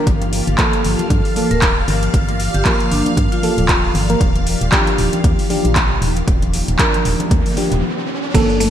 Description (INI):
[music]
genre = deep house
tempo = 116 BPM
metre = 4/4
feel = swing 57% on 16ths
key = unclear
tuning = A4 = 440 Hz
[part]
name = soft string machine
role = sustained chords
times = 0.0-8.7 s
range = Eb3 to A5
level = -27 LUFS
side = left 1 dB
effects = phaser, ensemble chorus, sidechain pumping
[part]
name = mellow FM electric piano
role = stabs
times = 0.0-8.7 s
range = F3 to Bb4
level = -21 LUFS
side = equal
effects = chorus, sidechain pumping, ping-pong delay
[part]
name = organ-like FM bass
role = bass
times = 0.1-8.7 s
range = D1 to G2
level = -20 LUFS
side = equal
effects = sidechain pumping
[part]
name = deep house drum kit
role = drums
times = 0.1-8.7 s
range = crash cymbal, handclaps, hi-hat, shaker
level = -21 LUFS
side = equal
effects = overdrive, small room reverb, gated reverb
[part]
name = electronic kick drum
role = drums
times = 0.1-8.5 s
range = none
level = -18 LUFS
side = equal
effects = overdrive, small room reverb
[part]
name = string machine, violins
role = texture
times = 0.1-7.8 s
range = F5 to F6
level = -29 LUFS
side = right 1 dB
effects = ensemble chorus
[part]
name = congas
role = percussion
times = 0.2-7.8 s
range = none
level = -27 LUFS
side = left 4 dB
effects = none
[part]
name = vibraphone with medium hard mallets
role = melody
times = 1.5-3.8 s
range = D4 to Bb4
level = -24 LUFS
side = left 1 dB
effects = vintage 12-bit sampler grit, ping-pong delay
[part]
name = riser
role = sound effects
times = 6.3-8.3 s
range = none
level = -27 LUFS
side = right 1 dB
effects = none
[part]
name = mallet-like synth pluck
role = arpeggios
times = 8.3-8.7 s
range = A3 to Bb3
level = -19 LUFS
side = right 2 dB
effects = chorus, sidechain pumping
[sound]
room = moderate lush hall reverb, RT60 1.9 s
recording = bright 1980s-style digital production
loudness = -14 LUFS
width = side -10 dB against mid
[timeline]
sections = 0.0-8.3 A section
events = riser 6.3-8.3; stop 7.8-8.3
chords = 0.1 Gm9; 4.2 Ebmaj9